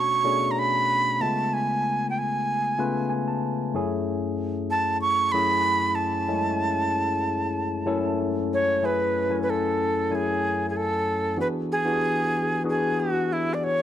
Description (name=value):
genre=soul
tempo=94 BPM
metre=4/4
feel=straight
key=F# minor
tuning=A4 = 440 Hz
part: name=breathy bright jazz flute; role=melody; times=0.0-13.8 s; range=E4 to C#6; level=-24 LUFS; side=right 2 dB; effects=none
part: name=barky tine electric piano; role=accompaniment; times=0.0-13.8 s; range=F#2 to A5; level=-26 LUFS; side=left 2 dB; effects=overdrive, phaser
room=light reverb, small room ambience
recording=none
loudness=-22 LUFS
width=side -10 dB against mid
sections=0.0-8.8 A section; 8.8-13.8 B section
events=tine electric piano fill 2.8-3.7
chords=0.0 Bm7; 1.2 C#7b13; 3.7 F#m9; 11.4 E7